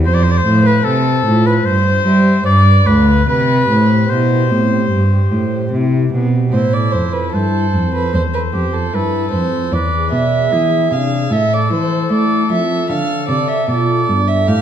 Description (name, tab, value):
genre	classical, baroque-style sonata movement with continuo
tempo	75 BPM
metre	4/4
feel	straight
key	C major, A minor from 6.5 s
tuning	A4 = 437 Hz
part	pipe organ, principal	accompaniment	0.0-14.6 s	D2 to F5	-19 LUFS	left 1 dB	none
part	warm cello	bass	0.0-14.6 s	D2 to A3	-15 LUFS	right 1 dB	none
part	clear oboe	melody	0.1-14.6 s	E4 to D5	-21 LUFS	left 8 dB	none
part	warm violin	second line	0.1-14.6 s	G4 to F5	-19 LUFS	right 5 dB	none
room	wet recital hall reverb, RT60 1.4 s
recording	dark, warm production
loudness	-12 LUFS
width	side -9 dB against mid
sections	0.0-6.5 A section; 6.5-14.6 A section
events	none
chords	0.0 F; 1.6 C/G; 2.5 G7; 3.3 C; 6.5 Am; 9.7 E7; 11.3 Am; 12.9 Dm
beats	| 0.05 0.85 1.65 2.46 | 3.27 4.10 4.91 5.72 | 6.54 7.34 8.14 8.94 | 9.73 10.52 11.31 12.11 | 12.90 13.69 14.48